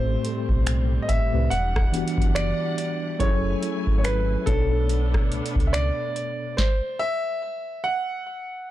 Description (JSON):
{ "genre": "contemporary R&B", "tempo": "71 BPM", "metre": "4/4", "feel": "swing 58% on 16ths", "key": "unclear", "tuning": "A4 = 439 Hz", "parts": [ { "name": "warm concert grand piano", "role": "melody", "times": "0.0-8.7 s", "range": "A4 to F#5", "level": "-28 LUFS", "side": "equal", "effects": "ping-pong delay" }, { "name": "mellow tine electric piano", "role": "accompaniment", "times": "0.0-6.6 s", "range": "A2 to C#5", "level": "-28 LUFS", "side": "left 1 dB", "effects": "medium stereo tremolo" }, { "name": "warm studio string section", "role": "sustained chords", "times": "0.0-6.6 s", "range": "E3 to G#5", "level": "-35 LUFS", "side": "equal", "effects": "none" }, { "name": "sub bass with octave", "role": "bass", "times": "0.0-5.9 s", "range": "E1 to C#2", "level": "-25 LUFS", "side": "equal", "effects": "none" }, { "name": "booming analog drum machine", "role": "drums", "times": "0.2-6.8 s", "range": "finger snaps, hi-hat, kick drum, rim click, snare drum", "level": "-23 LUFS", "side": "equal", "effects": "vintage 12-bit sampler grit" } ], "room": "little or no reverb", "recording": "dark, warm production", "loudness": "-21 LUFS", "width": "side -14 dB against mid", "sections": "0.0-8.7 A section", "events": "stop 6.6-8.7", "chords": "0.0 Am9; 1.5 Em9; 3.2 F#m9; 4.5 Bm9; 6.6 N.C." }